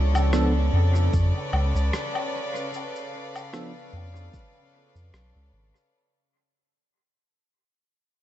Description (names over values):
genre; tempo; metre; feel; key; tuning
ambient dub; 75 BPM; 4/4; swing 55% on 16ths; unclear; A4 = 440 Hz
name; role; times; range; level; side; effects
clear chamber string section; sustained chords; 0.0-5.9 s; C#3 to E#5; -32 LUFS; left 1 dB; none
soft dub sub bass; bass; 0.0-5.7 s; B1 to E#2; -21 LUFS; equal; none
electronic shaker, woodblock and rim click; drums; 0.2-5.9 s; none; -33 LUFS; left 2 dB; overdrive, studio reverb, dub echo
bell-like tine electric piano; stabs; 0.3-3.7 s; E#3 to A4; -30 LUFS; right 2 dB; analog chorus, dub echo
electronic kick drum; drums; 1.1-4.5 s; none; -29 LUFS; equal; studio reverb
room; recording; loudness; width
light reverb, digital ambience; vinyl crackle, nothing above 8.0 kHz; -21 LUFS; side -13 dB against mid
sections
0.0-5.9 A section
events
fade-out 0.0-5.9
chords
0.0 C#7b9b13